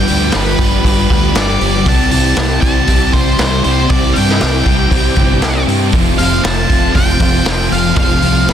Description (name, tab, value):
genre	rock, shoegaze and dream pop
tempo	118 BPM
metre	4/4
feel	straight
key	unclear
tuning	A4 = 439 Hz
part	octave-fuzz lead guitar	melody	0.0-8.5 s	B4 to A5	-18 LUFS	equal	distortion, digital delay
part	phased string machine	sustained chords	0.0-8.5 s	E4 to A5	-24 LUFS	left 1 dB	ensemble chorus, phaser
part	overdriven electric guitar	riff	0.0-8.5 s	F2 to G4	-19 LUFS	right 13 dB	reverse reverb
part	thick fuzz guitar	riff	0.0-8.5 s	F2 to C4	-18 LUFS	left 12 dB	distortion, analog chorus
part	growling fingered electric bass	bass	0.0-8.5 s	F1 to G2	-17 LUFS	equal	overdrive
part	raw garage drum kit	drums	0.1-8.5 s	hi-hat, kick drum, snare drum	-15 LUFS	equal	none
room	little or no reverb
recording	dense, heavily limited modern master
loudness	-10 LUFS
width	side -9 dB against mid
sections	0.0-8.5 A section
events	none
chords	0.0 G7; 1.9 C69; 5.9 F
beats	0.33 0.84 1.35 | 1.86 2.37 2.88 3.39 | 3.90 4.41 4.92 5.43 | 5.94 6.45 6.96 7.46 | 7.97 8.48